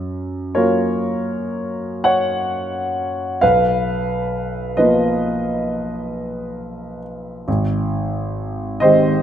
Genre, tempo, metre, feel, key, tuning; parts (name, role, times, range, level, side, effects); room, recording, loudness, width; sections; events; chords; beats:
classical, impressionist solo piano; 39-45 BPM (dotted quarters); 9/8; rubato; A4 = 440 Hz
warm grand piano; solo; 0.0-9.2 s; G#1 to F#5; -18 LUFS; equal
light reverb; close, detailed microphones; -17 LUFS; side -10 dB against mid
0.0-9.2 A section
0.0 F#maj7; 3.4 Bmaj7#11; 7.5 G#maj7
0.55 2.05 | 3.42 4.78 6.12 | 7.47 8.81